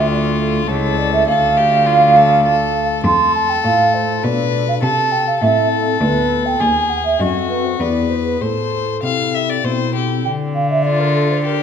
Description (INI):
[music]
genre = classical, baroque-style sonata movement with continuo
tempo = 101 BPM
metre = 3/4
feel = straight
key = D minor, A minor from 3.0 s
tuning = A4 = 436 Hz
[part]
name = warm violin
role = melody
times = 0.0-11.6 s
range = F4 to F5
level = -21 LUFS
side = left 8 dB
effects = none
[part]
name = mellow hollow baroque flute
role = second line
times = 0.0-11.6 s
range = A4 to C6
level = -16 LUFS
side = right 3 dB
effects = none
[part]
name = pipe organ, stopped flute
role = accompaniment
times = 0.0-11.6 s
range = C#2 to Bb4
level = -23 LUFS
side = left 2 dB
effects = none
[part]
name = rich cello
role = bass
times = 0.0-11.6 s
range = C#2 to D3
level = -20 LUFS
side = equal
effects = none
[sound]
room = wet recital hall reverb, RT60 1.7 s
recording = minimal, uncompressed stereo recording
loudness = -13 LUFS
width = side -7 dB against mid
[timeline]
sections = 0.0-10.3 A section; 10.3-11.6 A section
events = none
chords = 0.0 Dm; 0.7 A/C#; 1.3 Dm; 3.0 F; 4.2 Bm7b5; 4.8 Am/C; 6.0 Bm7b5/D; 6.6 D#dim7; 7.8 E7; 8.4 Am; 10.3 Dm